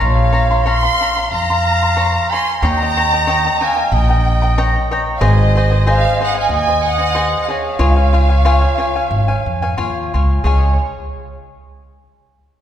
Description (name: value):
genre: mexican folk, mariachi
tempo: 92 BPM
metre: 4/4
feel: straight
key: Db major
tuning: A4 = 436 Hz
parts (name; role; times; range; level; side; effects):
- rich studio violin section; melody; 0.0-10.8 s; Db5 to C6; -19 LUFS; equal; none
- warm trumpet; second line; 0.0-10.8 s; Ab3 to Ab5; -22 LUFS; right 3 dB; none
- cavaquinho; accompaniment; 0.0-10.7 s; F4 to C6; -20 LUFS; left 2 dB; none
- upright bass; bass; 0.0-10.8 s; Ab1 to F2; -16 LUFS; equal; none
room: wet concert hall reverb, RT60 2.2 s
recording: heard from further back in the room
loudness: -13 LUFS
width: side -10 dB against mid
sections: 0.0-10.4 A section; 10.4-12.6 B section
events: none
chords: 0.0 Bbmadd9; 2.6 Eb7; 5.2 Ab; 7.8 Db